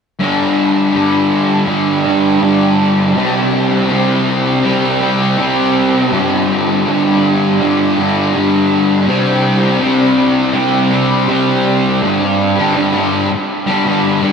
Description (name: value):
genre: rock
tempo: 81 BPM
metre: 4/4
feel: straight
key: unclear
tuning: A4 = 440 Hz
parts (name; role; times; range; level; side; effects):
- fuzz guitar; solo; 0.2-14.3 s; G2 to C4; -11 LUFS; equal; distortion, wide subtle chorus, tape echo
room: wet huge ambient reverb, RT60 8.0 s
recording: dreamy mix soaked in reverb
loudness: -11 LUFS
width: side -6 dB against mid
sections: 0.2-12.0 A section; 12.0-14.3 B section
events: none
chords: 0.2 G5; 3.2 C5; 6.1 G5; 9.1 C5; 12.0 G5